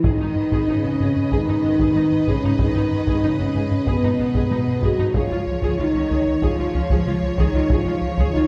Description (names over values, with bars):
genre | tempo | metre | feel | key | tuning
cinematic, hybrid orchestral and electronic film score | 94 BPM | 4/4 | straight | unclear | A4 = 441 Hz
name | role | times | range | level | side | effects
warm symphonic violin section | melody | 0.0-8.5 s | C#5 to D#5 | -38 LUFS | equal | none
warm symphonic violin section | second line | 0.0-8.5 s | B4 to C#5 | -34 LUFS | equal | none
rich symphonic viola section | accompaniment | 0.0-8.4 s | B3 to G#4 | -33 LUFS | equal | none
dark French horn section | sustained chords | 0.0-8.5 s | B3 to F#4 | -24 LUFS | equal | none
rubbery square bass | riff | 0.0-8.4 s | C#2 to G#3 | -28 LUFS | equal | none
rich symphonic double bass section | bass | 0.0-8.4 s | G#1 to C#2 | -31 LUFS | equal | none
warm studio cello section | bass | 0.0-8.5 s | B2 to F#3 | -30 LUFS | equal | none
solo taiko drums | drums | 0.0-8.5 s | none | -28 LUFS | equal | none
room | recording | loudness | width
wet recital hall reverb, RT60 1.7 s | recorded in a church or concert hall | -20 LUFS | mono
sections
0.0-8.5 A section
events
none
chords
0.0 G#m; 5.2 C#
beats
| 0.04 0.68 1.32 1.96 | 2.60 3.24 3.87 4.51 | 5.15 5.79 6.43 7.07 | 7.70 8.34